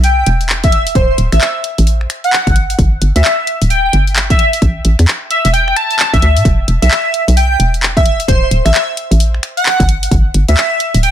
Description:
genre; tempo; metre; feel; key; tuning
UK garage, two-step garage; 131 BPM; 4/4; swing 62% on 16ths; A dorian; A4 = 442 Hz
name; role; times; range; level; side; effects
airy dreamy lead; melody; 0.0-11.1 s; C5 to A5; -15 LUFS; equal; chorus, dub echo
hollow knocking FM bass; bass; 0.0-11.1 s; D1 to A2; -12 LUFS; equal; none
house drum kit; drums; 0.0-11.1 s; finger snaps, handclaps, hi-hat; -17 LUFS; left 1 dB; none
electronic kick drum; drums; 0.6-10.2 s; none; -13 LUFS; equal; none
room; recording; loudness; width
little or no reverb; none; -10 LUFS; side -11 dB against mid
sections
0.0-11.1 A section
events
none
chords
0.0 E5; 1.0 D5; 2.6 G5; 4.4 A5; 6.5 E5; 8.3 D5; 9.9 G5

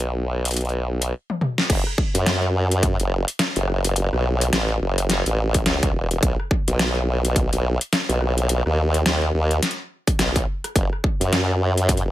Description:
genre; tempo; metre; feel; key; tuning
glitch hop; 106 BPM; 4/4; swing 59% on 16ths; F# dorian; A4 = 440 Hz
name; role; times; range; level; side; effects
formant-sweep wobble bass; bass; 0.0-12.1 s; E1 to F#2; -20 LUFS; equal; chorus, tube saturation
dubstep drum kit; drums; 0.0-12.1 s; crash cymbal, hi-hat, rim click, snare drum, toms; -23 LUFS; left 1 dB; overdrive
electronic kick drum; drums; 1.7-12.0 s; none; -21 LUFS; equal; overdrive
room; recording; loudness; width
little or no reverb; none; -19 LUFS; side -14 dB against mid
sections
0.0-1.7 A section; 1.7-12.1 B section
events
drum fill 1.3-1.7; drop 1.7-12.1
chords
none

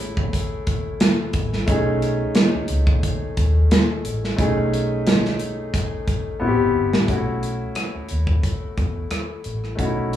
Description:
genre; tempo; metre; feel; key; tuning
lush 1970s-style soul; 89 BPM; 4/4; swing 54% on 16ths; unclear; A4 = 439 Hz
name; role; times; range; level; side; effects
warm baby grand piano; accompaniment; 0.0-10.2 s; A3 to G#4; -24 LUFS; left 2 dB; none
vintage muted fingered electric bass; bass; 0.0-10.2 s; G1 to E2; -23 LUFS; equal; none
modern studio drum kit; drums; 0.2-10.2 s; hi-hat, kick drum, rim click, snare drum; -21 LUFS; right 1 dB; none
room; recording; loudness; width
moderate large studio reverb, RT60 0.8 s; band playing live in one room, small room reverb; -19 LUFS; side -11 dB against mid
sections
0.0-7.1 A section; 7.1-10.2 B section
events
drum fill 6.4-7.1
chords
0.0 Amaj7; 1.7 B13; 6.4 Am7; 7.1 B9sus4

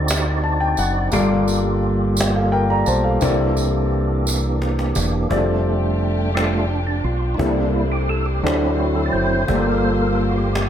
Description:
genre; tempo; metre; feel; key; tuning
slow gospel; 58 BPM (dotted quarters); 6/8; straight; F major; A4 = 442 Hz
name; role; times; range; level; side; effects
warm concert grand piano; accompaniment; 0.0-10.7 s; G2 to Bb5; -22 LUFS; left 2 dB; none
percussive tonewheel organ; sustained chords; 0.0-10.7 s; E3 to D5; -22 LUFS; right 2 dB; slow rotary speaker, chorus vibrato
fingered electric bass; bass; 0.0-10.7 s; E1 to D2; -21 LUFS; equal; none
cajon; drums; 0.1-10.7 s; none; -27 LUFS; equal; none
tambourine; percussion; 0.1-5.3 s; none; -28 LUFS; right 4 dB; none
warm studio string section; sustained chords; 5.3-10.7 s; A3 to C5; -31 LUFS; left 2 dB; none
room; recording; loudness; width
light reverb; none; -17 LUFS; side -9 dB against mid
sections
0.0-5.3 A section; 5.3-10.7 B section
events
grand piano fill 0.1-1.1; drum fill 4.3-5.3; tonewheel organ solo 5.3-10.7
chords
0.0 D7b9; 1.1 Gm9; 3.2 C13; 5.3 F69; 7.4 C13; 8.4 D7; 9.5 Gm9

